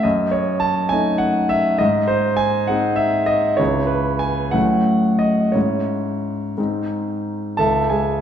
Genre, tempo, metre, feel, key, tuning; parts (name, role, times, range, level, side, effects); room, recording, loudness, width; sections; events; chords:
classical, romantic character piece for solo piano; 58-69 BPM (dotted quarters); 6/8; rubato; C# minor; A4 = 439 Hz
warm concert grand piano; solo; 0.0-8.2 s; C#2 to A5; -17 LUFS; equal
wet recital hall reverb, RT60 1.7 s; recorded in a church or concert hall; -17 LUFS; side -9 dB against mid
0.0-7.6 A section
0.0 D#m7b5/F#; 1.8 G#; 3.6 C#m; 4.6 F#m/A; 5.5 C#m/G#; 6.6 G#; 7.6 C#m